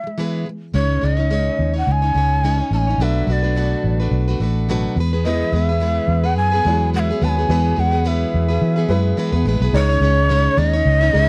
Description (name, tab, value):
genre	acoustic pop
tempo	107 BPM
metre	4/4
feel	swing 55% on 16ths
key	E major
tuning	A4 = 444 Hz
part	breathy mellow shakuhachi	melody	0.0-11.3 s	C#5 to A5	-24 LUFS	equal	none
part	picked plugged-in steel-string acoustic guitar	accompaniment	0.0-11.3 s	B2 to C#5	-25 LUFS	equal	none
part	vintage muted fingered electric bass	bass	0.7-11.3 s	A1 to E3	-20 LUFS	equal	none
part	felt-muted upright piano	accompaniment	5.2-11.3 s	F#3 to C#5	-29 LUFS	equal	none
room	little or no reverb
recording	dry, close 1970s-style studio recording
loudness	-18 LUFS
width	mono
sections	0.7-9.7 A section; 9.7-11.3 B section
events	none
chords	0.0 E; 0.7 C#sus2; 3.0 Bm7; 5.0 E; 9.7 C#sus2